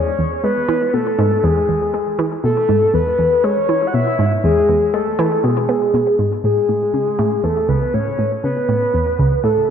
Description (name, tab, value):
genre	ambient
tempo	120 BPM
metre	4/4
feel	straight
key	unclear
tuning	A4 = 437 Hz
part	soft octave-layered synth lead	melody	0.0-9.7 s	G#4 to F#5	-17 LUFS	left 1 dB	chorus, phaser, ping-pong delay
part	analog pluck	riff	0.0-9.6 s	C#2 to B3	-18 LUFS	right 1 dB	chorus, ping-pong delay
room	wet spring reverb, RT60 2.4 s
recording	echo-heavy mix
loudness	-14 LUFS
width	side -8 dB against mid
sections	0.0-6.4 A section; 6.4-9.7 B section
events	none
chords	0.0 E; 6.4 Amaj7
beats	| 0.44 0.94 1.44 1.94 | 2.44 2.94 3.44 3.94 | 4.44 4.94 5.44 5.94 | 6.44 6.94 7.44 7.94 | 8.44 8.94 9.44